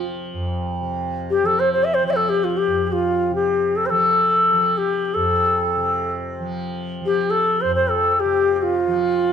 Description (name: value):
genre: indian classical, Hindustani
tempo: free time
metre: none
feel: none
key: F raga hamsadhwani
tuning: A4 = 444 Hz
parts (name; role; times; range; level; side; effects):
- bright reedy bansuri; melody; 0.0-9.3 s; F4 to E5; -17 LUFS; left 1 dB; none
- tanpura; drone; 0.0-9.3 s; F2 to F3; -26 LUFS; equal; none
room: moderate concert hall reverb, RT60 1.9 s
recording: dark, warm production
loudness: -17 LUFS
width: side -8 dB against mid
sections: 0.8-9.3 A section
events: none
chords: none